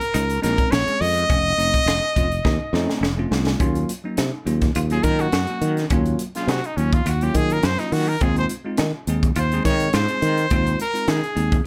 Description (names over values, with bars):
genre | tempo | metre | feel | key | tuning
electric jazz fusion | 104 BPM | 4/4 | straight | Eb dorian | A4 = 440 Hz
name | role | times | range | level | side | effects
brilliant trumpet | melody | 0.0-11.7 s | Db4 to Eb5 | -25 LUFS | equal | slapback echo, plate reverb
bell-like tine electric piano | accompaniment | 0.0-11.6 s | Gb3 to Ab4 | -30 LUFS | equal | none
crisp fusion drum kit | drums | 0.0-11.6 s | hi-hat, kick drum, snare drum | -26 LUFS | equal | none
clean electric guitar | stabs | 0.1-11.3 s | C4 to Gb4 | -34 LUFS | equal | lush chorus
sustaining fretless electric bass | bass | 0.1-11.6 s | F1 to Eb3 | -24 LUFS | equal | none
room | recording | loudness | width
light reverb | none | -21 LUFS | mono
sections
0.0-3.6 A section; 3.6-11.7 B section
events
drum fill 2.4-3.6; trumpet solo 3.6-11.7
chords
0.0 Bbm9; 1.3 F7b13; 3.6 Ebm9; 8.2 Fm7/Eb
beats
0.14 0.72 | 1.29 1.87 2.45 3.02 | 3.60 4.18 4.75 5.33 | 5.91 6.48 7.06 7.63 | 8.21 8.79 9.36 9.94 | 10.51 11.09 11.66